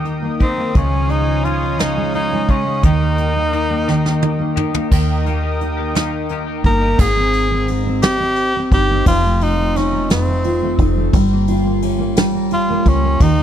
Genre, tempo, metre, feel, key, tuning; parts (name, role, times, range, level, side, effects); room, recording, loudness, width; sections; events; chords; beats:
six-eight pop ballad; 58 BPM (dotted quarters); 6/8; straight; A4 = 436 Hz
fingerpicked steel-string acoustic guitar; accompaniment; 0.0-13.4 s; F2 to F4; -19 LUFS; right 1 dB; double-tracked left and right
warm analog pad; sustained chords; 0.0-7.0 s; Bb4 to Eb6; -27 LUFS; equal; chorus, tremolo
twelve-string electric guitar; arpeggios; 0.0-7.0 s; Db3 to G4; -28 LUFS; left 14 dB; lush chorus
deep dub fingered electric bass; bass; 0.0-13.4 s; F1 to Eb2; -20 LUFS; equal
soft brush drum kit; drums; 0.1-13.4 s; crash cymbal, hi-hat, kick drum, ride cymbal, snare drum, toms; -17 LUFS; equal
clear tenor saxophone; melody; 0.4-13.4 s; C4 to Bb4; -20 LUFS; equal; tape echo
little or no reverb; dry, close 1970s-style studio recording; -14 LUFS; side -10 dB against mid
0.0-4.9 A section; 4.9-7.0 B section; 7.0-13.4 C section
drum fill 3.9-4.9
0.0 Eb; 0.8 Dbadd9; 2.8 Eb; 7.0 Ab; 9.1 F7; 11.1 Gm7b5
| 0.76 1.80 | 2.84 3.88 | 4.92 5.95 | 6.99 8.03 | 9.06 10.10 | 11.14 12.17 | 13.21